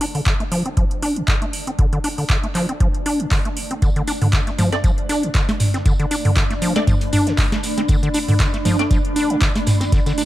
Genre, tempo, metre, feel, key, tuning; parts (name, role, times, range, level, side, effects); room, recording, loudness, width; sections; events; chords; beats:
acid house; 118 BPM; 4/4; swing 55% on 16ths; D dorian; A4 = 444 Hz
acid bass, square; riff; 0.0-10.2 s; C3 to D4; -23 LUFS; equal; overdrive, cassette tape, sidechain pumping, analog delay
booming analog drum machine; drums; 0.0-10.3 s; handclaps, hi-hat, snare drum, toms; -21 LUFS; equal; overdrive
granular cloud pad; texture; 0.0-10.3 s; A3 to B5; -27 LUFS; right 1 dB; built-in reverb, sidechain pumping
electronic kick drum; drums; 0.3-10.0 s; -19 LUFS; equal; overdrive
cloth-damped thuddy drum kit; drums; 3.8-10.3 s; hi-hat, snare drum, tambourine; -34 LUFS; equal; sidechain pumping on hats, high-pass filter on hats, high-pass filter on snare, sidechain pumping on perc, high-pass filter on perc, high-pass filter on room
filtered dub chord stab; stabs; 4.7-8.8 s; A3 to D5; -28 LUFS; equal; phaser, lush chorus, analog delay
light reverb, digital ambience; -16 LUFS; side -15 dB against mid
0.0-10.3 A section
fade-in on ambient pad 0.0-10.3; filter sweep on acid bass 0.0-10.3
0.0 D5
0.26 0.77 1.28 | 1.79 2.30 2.81 3.31 | 3.82 4.33 4.84 5.35 | 5.86 6.36 6.87 7.38 | 7.89 8.40 8.91 9.41 | 9.92